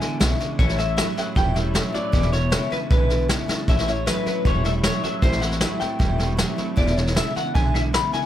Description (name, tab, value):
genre	rockabilly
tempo	155 BPM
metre	4/4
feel	straight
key	unclear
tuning	A4 = 439 Hz
part	electric guitar through a small old amp	melody	0.0-8.3 s	B4 to B5	-26 LUFS	left 2 dB	wide subtle chorus, analog delay
part	picked steel-string acoustic guitar	accompaniment	0.0-8.3 s	E2 to E4	-30 LUFS	left 5 dB	none
part	electric guitar through a small old amp	riff	0.0-8.3 s	E2 to G3	-28 LUFS	right 4 dB	ensemble chorus
part	upright bass	bass	0.0-8.2 s	E1 to B1	-24 LUFS	equal	none
part	vintage brush drum kit	drums	0.0-8.2 s	hi-hat, kick drum, snare drum	-23 LUFS	equal	none
room	little or no reverb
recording	none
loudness	-19 LUFS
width	side -11 dB against mid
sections	0.0-8.3 A section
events	drum fill 3.5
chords	0.0 E7; 0.6 A7; 2.1 E7; 3.7 A7; 5.2 Am7; 6.8 E7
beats	0.20 | 0.59 0.97 1.36 1.75 | 2.13 2.52 2.91 3.29 | 3.68 4.07 4.45 4.84 | 5.23 5.61 6.00 6.39 | 6.77 7.16 7.55 7.93